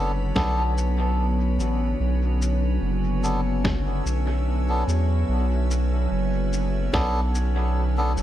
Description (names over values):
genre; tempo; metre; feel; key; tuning
ambient dub; 73 BPM; 4/4; swing 53% on 16ths; B minor; A4 = 440 Hz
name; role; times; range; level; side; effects
soft additive organ-like pad; sustained chords; 0.0-8.2 s; D3 to E5; -29 LUFS; right 1 dB; ensemble chorus, built-in reverb
melodica; stabs; 0.0-8.1 s; B3 to A4; -30 LUFS; equal; dub echo
round analog bass; bass; 0.0-8.2 s; F#1 to E2; -23 LUFS; equal; none
drifting glass-harmonics texture; texture; 0.0-8.2 s; C#4 to C#5; -34 LUFS; left 1 dB; chorus, built-in reverb
electronic kick drum; drums; 0.4-7.1 s; none; -28 LUFS; equal; none
electronic snare drum and shaker; drums; 0.4-8.2 s; none; -31 LUFS; equal; dub echo
room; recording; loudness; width
light reverb, digital ambience; none; -21 LUFS; side -12 dB against mid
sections
0.0-8.2 A section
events
none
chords
0.0 Bm7